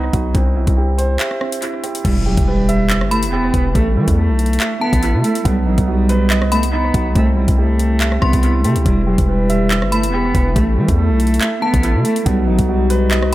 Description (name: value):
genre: hip hop, drill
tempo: 141 BPM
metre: 4/4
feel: half-time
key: E harmonic minor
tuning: A4 = 445 Hz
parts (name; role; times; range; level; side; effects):
- dark baby grand piano; accompaniment; 0.0-13.3 s; C3 to E6; -22 LUFS; right 4 dB; low-pass filter, analog delay
- hard-hitting 808-style bass; bass; 0.0-13.3 s; E1 to E3; -17 LUFS; equal; none
- drill drum kit; drums; 0.1-13.3 s; crash cymbal, handclaps, hi-hat, kick drum, rim click; -20 LUFS; equal; analog delay
- dark cello; melody; 2.0-13.3 s; F#3 to B3; -19 LUFS; equal; low-pass filter, analog delay
- impact; sound effects; 2.0-3.8 s; none; -26 LUFS; left 1 dB; none
- metallic FM bell; second line; 3.1-11.8 s; A5 to C6; -25 LUFS; left 3 dB; chorus, analog delay
- mellow French horn section; sustained chords; 8.9-13.3 s; E3 to B4; -25 LUFS; left 3 dB; none
room: little or no reverb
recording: echo-heavy mix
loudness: -13 LUFS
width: side -16 dB against mid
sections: 0.0-2.0 A section; 2.0-13.3 B section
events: break 1.2-2.0; impact 2.0-3.8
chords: 0.3 C; 2.0 Em; 3.8 A5; 5.5 B; 7.2 C; 8.9 Em; 10.6 A5; 12.3 B